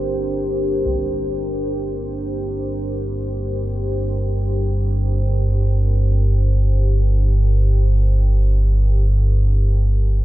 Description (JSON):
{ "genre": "dark ambient drone", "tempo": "free time", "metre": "none", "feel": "none", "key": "G minor", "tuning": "A4 = 440 Hz", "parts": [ { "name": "deep dark ambient pad", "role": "sustained chords", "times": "0.0-10.2 s", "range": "D4 to C5", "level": "-25 LUFS", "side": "equal", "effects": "chorus, built-in reverb" }, { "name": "deep rumbling drone", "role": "drone", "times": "0.0-10.2 s", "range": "G1 to G2", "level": "-17 LUFS", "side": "equal", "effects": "built-in reverb, wide subtle chorus" }, { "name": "solo taiko drums", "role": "percussion", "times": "0.9-1.1 s", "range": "none", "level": "-29 LUFS", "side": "right 1 dB", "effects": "low-pass filter on perc" } ], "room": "light reverb, studio reverb", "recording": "nothing above 7.7 kHz", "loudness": "-16 LUFS", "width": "side -16 dB against mid", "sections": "0.0-10.2 A section", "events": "fade-in on drum 0.0-10.2; filter sweep on synth drone 0.0-10.2", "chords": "0.0 Gm", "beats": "free time" }